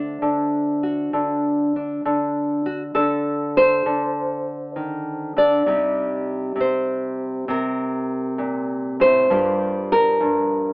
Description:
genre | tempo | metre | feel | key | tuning
solo jazz | 66 BPM | 4/4 | swing 67% on 8ths | unclear | A4 = 438 Hz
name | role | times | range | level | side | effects
nylon-string guitar | solo | 0.0-10.7 s | G2 to D5 | -19 LUFS | equal | none
room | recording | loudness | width
moderate studio ambience, RT60 0.5 s | telephone sound | -19 LUFS | side -28 dB against mid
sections
0.0-10.7 A section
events
none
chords
0.0 D7; 5.7 Cm7; 9.3 Gm7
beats
0.22 1.13 | 2.04 2.95 3.85 4.76 | 5.67 6.58 7.49 8.40 | 9.31 10.22

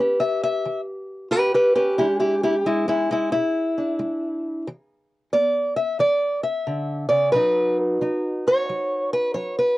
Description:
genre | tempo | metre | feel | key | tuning
acoustic country blues, solo or duo | 90 BPM | 4/4 | swing 65% on 8ths | unclear | A4 = 436 Hz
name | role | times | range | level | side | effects
fingerpicked steel-string acoustic guitar | solo | 0.0-9.8 s | B2 to E5 | -20 LUFS | equal | cassette tape
room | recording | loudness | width
moderate booth ambience, RT60 0.2 s | home recording on cassette | -20 LUFS | side -17 dB against mid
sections
0.0-9.8 A section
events
steel-string acoustic guitar solo 0.0-9.8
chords
0.0 A7 (rootless); 2.0 E7; 7.3 B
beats
0.65 1.32 | 1.99 2.66 3.33 4.00 | 4.67 5.33 6.00 6.67 | 7.34 8.02 8.69 9.36

